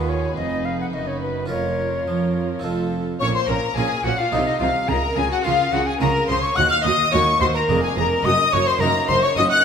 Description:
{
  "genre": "classical, baroque-style concerto movement with solo episodes",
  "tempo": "107 BPM",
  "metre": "3/4",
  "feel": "straight",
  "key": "Bb minor",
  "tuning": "A4 = 440 Hz",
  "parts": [
    { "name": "rich studio violin section", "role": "melody", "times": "0.0-9.6 s", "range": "F4 to Gb6", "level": "-26 LUFS", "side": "left 5 dB", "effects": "none" },
    { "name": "silver concert flute", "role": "melody", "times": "0.0-9.6 s", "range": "B4 to Gb6", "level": "-22 LUFS", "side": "left 3 dB", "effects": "none" },
    { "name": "rich studio violin section", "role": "second line", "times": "0.0-9.6 s", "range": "Eb4 to Gb5", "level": "-25 LUFS", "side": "left 2 dB", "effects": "none" },
    { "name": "harpsichord", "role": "accompaniment", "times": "0.0-9.6 s", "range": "D#2 to B4", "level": "-28 LUFS", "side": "right 1 dB", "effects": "none" },
    { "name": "rich chamber viola section", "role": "accompaniment", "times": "0.0-9.5 s", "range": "Db4 to Ab4", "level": "-30 LUFS", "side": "right 4 dB", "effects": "none" },
    { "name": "rich chamber cello section", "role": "bass", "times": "0.0-9.5 s", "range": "D#2 to F3", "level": "-27 LUFS", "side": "right 3 dB", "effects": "none" },
    { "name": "rich chamber double bass section", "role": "bass", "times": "0.0-9.4 s", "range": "F1 to F2", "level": "-27 LUFS", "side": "right 3 dB", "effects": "none" }
  ],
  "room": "wet recital hall reverb, RT60 1.4 s",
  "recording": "minimal, uncompressed stereo recording",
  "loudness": "-18 LUFS",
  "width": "side -7 dB against mid",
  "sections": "0.0-3.2 A section; 3.2-9.6 B section",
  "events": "none",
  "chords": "0.0 B; 1.5 Bbm/F; 2.6 F; 3.2 Bbm; 4.3 F7/C; 4.9 Bbm/Db; 6.6 Ebm; 7.7 Bb7/F; 8.2 Ebm/Gb"
}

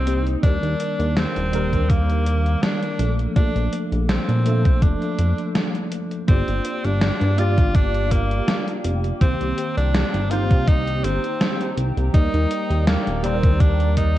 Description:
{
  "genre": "vaporwave",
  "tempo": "82 BPM",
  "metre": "4/4",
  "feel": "swing 54% on 16ths",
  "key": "G minor",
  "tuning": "A4 = 440 Hz",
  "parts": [
    { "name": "edgy tenor saxophone", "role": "melody", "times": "0.0-14.2 s", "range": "Bb3 to F4", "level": "-27 LUFS", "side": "equal", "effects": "tape echo" },
    { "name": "tine electric piano", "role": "accompaniment", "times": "0.0-14.2 s", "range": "Eb3 to D5", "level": "-26 LUFS", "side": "equal", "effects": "medium stereo tremolo, ensemble chorus, vintage 12-bit sampler grit" },
    { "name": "chorused synth bass", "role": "bass", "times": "0.0-14.2 s", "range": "Eb1 to Bb2", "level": "-21 LUFS", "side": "equal", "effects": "none" },
    { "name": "gated 80s digital drum machine", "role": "drums", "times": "0.1-14.1 s", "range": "hi-hat, snare drum", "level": "-24 LUFS", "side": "equal", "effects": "gated reverb, gated reverb snare" },
    { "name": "electronic kick drum", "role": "drums", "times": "0.4-14.1 s", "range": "none", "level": "-17 LUFS", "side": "equal", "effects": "none" },
    { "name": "warbly tape-like pad", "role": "sustained chords", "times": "6.9-14.2 s", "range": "G4 to D6", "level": "-35 LUFS", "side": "equal", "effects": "chorus, built-in reverb" }
  ],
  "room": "light reverb",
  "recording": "cassette tape",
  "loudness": "-18 LUFS",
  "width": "side -14 dB against mid",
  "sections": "0.0-6.3 A section; 6.3-14.2 B section",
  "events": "none",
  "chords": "0.4 Ebmaj7; 3.0 Bbmaj7; 6.3 Gm7; 9.2 Cm7; 12.1 Ebmaj7"
}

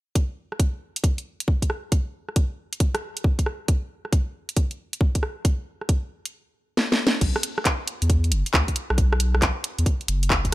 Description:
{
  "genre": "UK garage, two-step garage",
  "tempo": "136 BPM",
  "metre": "4/4",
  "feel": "swing 66% on 16ths",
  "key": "B minor",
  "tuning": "A4 = 440 Hz",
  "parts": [
    { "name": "electronic kick drum", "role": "drums", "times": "0.2-10.5 s", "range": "none", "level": "-21 LUFS", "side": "equal", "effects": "studio reverb" },
    { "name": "garage drum kit", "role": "drums", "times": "0.2-10.5 s", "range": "crash cymbal, handclaps, hi-hat, rim click, snare drum", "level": "-24 LUFS", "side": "equal", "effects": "studio reverb" },
    { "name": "saturated sub bass", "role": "bass", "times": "7.2-10.5 s", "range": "F#1 to E2", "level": "-22 LUFS", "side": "equal", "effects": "none" }
  ],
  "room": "digital ambience",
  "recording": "none",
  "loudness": "-22 LUFS",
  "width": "side -17 dB against mid",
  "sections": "0.2-7.2 A section; 7.2-10.5 B section",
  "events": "drum fill 6.8-7.2",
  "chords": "none"
}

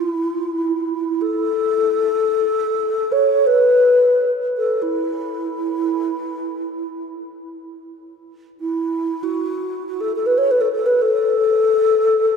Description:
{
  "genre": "world meditative, free-time meditation music",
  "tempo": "free time",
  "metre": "none",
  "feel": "none",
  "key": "A major pentatonic",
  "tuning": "A4 = 439 Hz",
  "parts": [
    { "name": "mellow hollow bass flute", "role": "solo", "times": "0.0-12.4 s", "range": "E4 to C#5", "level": "-17 LUFS", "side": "left 1 dB", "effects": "none" }
  ],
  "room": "wet cathedral reverb, RT60 4.9 s",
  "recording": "in a vast, echoing space",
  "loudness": "-16 LUFS",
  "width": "side -6 dB against mid",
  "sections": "0.0-12.4 A section",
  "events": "none",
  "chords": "none"
}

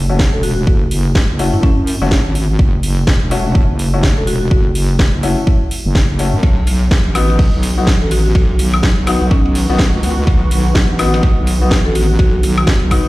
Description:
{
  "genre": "bass house",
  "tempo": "125 BPM",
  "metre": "4/4",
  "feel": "swing 60% on 16ths",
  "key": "F# dorian",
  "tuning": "A4 = 440 Hz",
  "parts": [
    { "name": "wobble bass", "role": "bass", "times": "0.0-13.1 s", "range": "E1 to F#2", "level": "-15 LUFS", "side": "equal", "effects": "chorus, sidechain pumping" },
    { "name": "warm baby grand piano", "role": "stabs", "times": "0.1-13.1 s", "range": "A3 to F#4", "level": "-22 LUFS", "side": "left 4 dB", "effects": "sidechain pumping, tape echo" },
    { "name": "electronic kick drum", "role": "drums", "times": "0.2-13.0 s", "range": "none", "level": "-13 LUFS", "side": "equal", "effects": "none" },
    { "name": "house drum kit", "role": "drums", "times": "0.2-13.0 s", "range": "hi-hat, snare drum, woodblock", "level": "-21 LUFS", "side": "equal", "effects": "none" },
    { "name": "marimba with medium mallets", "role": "melody", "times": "0.3-13.1 s", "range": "C#4 to A4", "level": "-22 LUFS", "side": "left 1 dB", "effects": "tape echo" },
    { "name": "sweeping resonant pad", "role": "sustained chords", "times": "7.6-13.1 s", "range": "D#3 to F#4", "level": "-24 LUFS", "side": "right 1 dB", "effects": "chorus, sidechain pumping" },
    { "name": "cloth-damped thuddy drum kit", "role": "drums", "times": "6.4-13.0 s", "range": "hi-hat, ride cymbal, snare drum", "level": "-30 LUFS", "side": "left 1 dB", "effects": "high-pass filter on cymbals, high-pass filter on hats, high-pass filter on snare, high-pass filter on room" }
  ],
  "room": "studio reverb",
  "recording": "played on a big sound system in a bare room, stone room reverb",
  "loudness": "-11 LUFS",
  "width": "side -18 dB against mid",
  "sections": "0.0-13.1 A section",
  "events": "none",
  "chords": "0.0 F#m; 6.4 B"
}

